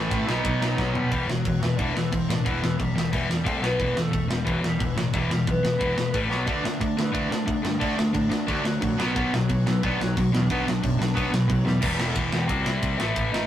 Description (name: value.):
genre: punk rock.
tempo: 179 BPM.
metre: 4/4.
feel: straight.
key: E minor.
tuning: A4 = 440 Hz.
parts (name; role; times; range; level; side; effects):
lead guitar through a small cranked amp; melody; 0.0-13.5 s; E3 to A5; -31 LUFS; equal; overdrive.
cranked stack guitar; riff; 0.0-13.5 s; E2 to D4; -26 LUFS; left 2 dB; overdrive.
crunchy overdriven guitar; riff; 0.0-1.1, 6.5-11.8 s; A2 to D4; -27 LUFS; right 4 dB; none.
overdriven picked electric bass; bass; 0.0-13.5 s; E1 to B2; -29 LUFS; equal; none.
tight metal drum kit; drums; 0.1-13.4 s; crash cymbal, kick drum, ride cymbal, snare drum, toms; -29 LUFS; equal; none.
room: light reverb.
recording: rough rehearsal-room recording, tube saturation.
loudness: -22 LUFS.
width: side -11 dB against mid.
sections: 0.0-1.1 A section; 1.1-11.8 B section; 11.8-13.5 A section.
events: drum fill 0.8-1.1, 6.3, 11.7.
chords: 0.3 B; 1.1 Em; 3.5 C5; 3.6 B5; 3.8 Em; 6.1 A5; 6.3 B5; 6.5 D; 9.0 Bm; 11.8 Em; 12.5 C.